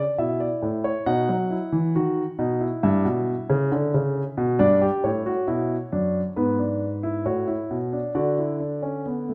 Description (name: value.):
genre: classical, baroque-style 3-part fugue for grand piano.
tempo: 68 BPM.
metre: 4/4.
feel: straight.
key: unclear.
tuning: A4 = 439 Hz.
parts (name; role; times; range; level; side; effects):
warm grand piano; solo; 0.0-9.3 s; F#2 to F#5; -24 LUFS; equal; none.
room: moderate recital hall reverb, RT60 1.5 s.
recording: none.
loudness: -24 LUFS.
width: mono.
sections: 0.0-9.3 A section.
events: none.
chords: 0.0 A; 1.1 B; 2.8 Em/G; 4.6 Em7/G; 6.4 E7/G#; 7.2 A; 8.1 D.